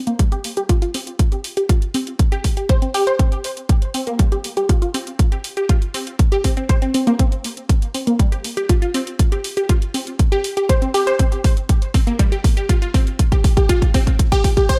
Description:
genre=progressive house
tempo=120 BPM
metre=4/4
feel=straight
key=unclear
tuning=A4 = 444 Hz
part: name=unison pluck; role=arpeggios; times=0.1-14.8 s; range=G3 to C5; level=-23 LUFS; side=equal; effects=sidechain pumping, tape echo
part: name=electronic hi-hat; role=drums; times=0.1-14.8 s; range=none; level=-30 LUFS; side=equal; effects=none
part: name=electronic kick drum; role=drums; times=0.2-14.8 s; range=none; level=-18 LUFS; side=equal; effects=none
room=light reverb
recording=none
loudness=-18 LUFS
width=mono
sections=0.0-14.8 A section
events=build-up 0.0-14.8; filter sweep on synth pluck 0.0-14.8; drum fill 7.2-14.8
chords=none

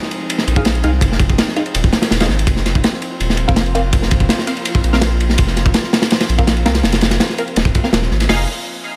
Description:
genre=drum and bass, jungle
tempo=165 BPM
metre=4/4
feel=straight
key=F minor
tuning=A4 = 440 Hz
part: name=airy breathy pad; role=sustained chords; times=0.0-8.5 s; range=F3 to F4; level=-28 LUFS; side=equal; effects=chorus
part: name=crunchy breakbeat drum kit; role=drums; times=0.0-8.4 s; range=hi-hat, kick drum, ride cymbal, snare drum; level=-18 LUFS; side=equal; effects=none
part: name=saturated sub bass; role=bass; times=0.5-8.5 s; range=Eb1 to C2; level=-20 LUFS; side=equal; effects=tube saturation
part: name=band-passed chord stab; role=stabs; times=0.6-8.4 s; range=C4 to F5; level=-26 LUFS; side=equal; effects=phaser, ensemble chorus, dub echo
room=studio reverb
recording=none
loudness=-16 LUFS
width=mono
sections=0.0-8.3 A section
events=none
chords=0.0 Fm7

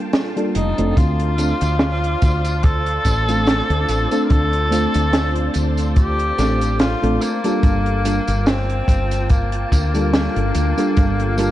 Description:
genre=vaporwave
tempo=72 BPM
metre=4/4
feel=swing 55% on 16ths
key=G minor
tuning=A4 = 440 Hz
part: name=mellow FM electric piano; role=accompaniment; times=0.0-11.5 s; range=G3 to A4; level=-22 LUFS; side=equal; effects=lush chorus
part: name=soft string machine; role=sustained chords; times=0.0-11.5 s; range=Bb3 to A5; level=-30 LUFS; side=equal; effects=phaser, ensemble chorus
part: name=compact cocktail drum kit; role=drums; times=0.1-11.5 s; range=hi-hat, snare drum, tambourine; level=-23 LUFS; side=right 1 dB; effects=none
part: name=warm tenor saxophone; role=melody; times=0.6-11.5 s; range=Bb3 to Bb4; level=-23 LUFS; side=left 1 dB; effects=tape echo
part: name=woody fretless electric bass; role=bass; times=0.6-11.5 s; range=F1 to D2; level=-20 LUFS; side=equal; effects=none
part: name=kick drum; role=drums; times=1.0-11.2 s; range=none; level=-16 LUFS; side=equal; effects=none
room=light reverb, small room ambience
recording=cassette tape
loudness=-16 LUFS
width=side -14 dB against mid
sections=0.0-11.5 A section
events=none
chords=0.0 Gm9; 1.0 Dm7; 7.6 Gm9

